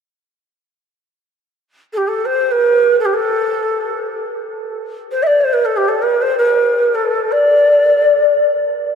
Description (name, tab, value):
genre	persian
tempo	free time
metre	none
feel	none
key	A dastgah shur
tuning	A4 = 440 Hz
part	breathy ney	melody	1.9-8.5 s	G4 to E5	-13 LUFS	equal	none
room	wet cathedral reverb, RT60 5.9 s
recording	in a vast, echoing space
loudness	-12 LUFS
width	side -7 dB against mid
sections	1.5-8.9 A section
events	none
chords	none